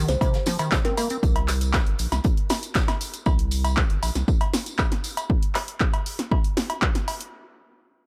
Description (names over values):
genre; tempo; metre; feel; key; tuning
acid house; 118 BPM; 4/4; straight; C minor; A4 = 440 Hz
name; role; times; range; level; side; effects
acid bass, square; riff; 0.0-1.2 s; C3 to C4; -31 LUFS; equal; lush chorus, sidechain pumping
saturated sub bass; bass; 0.0-4.2 s; G1 to C2; -27 LUFS; equal; sidechain pumping
kalimba; melody; 0.1-1.1 s; Bb4 to C5; -34 LUFS; equal; tape echo
punchy analog drum machine; drums; 0.1-7.3 s; cowbell, handclaps, hi-hat, snare drum; -29 LUFS; equal; none
tambourine; percussion; 0.1-5.3 s; none; -39 LUFS; equal; none
electronic kick drum; drums; 0.2-6.9 s; none; -25 LUFS; equal; none
jazz brush drum kit; drums; 0.2-3.1 s; hi-hat, snare drum; -42 LUFS; equal; none
room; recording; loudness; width
small room ambience; none; -24 LUFS; mono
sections
0.0-7.3 A section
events
drop 0.0-7.3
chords
none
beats
0.21 0.72 | 1.23 1.74 2.25 2.75 | 3.26 3.77 4.28 4.79 | 5.30 5.80 6.31 6.82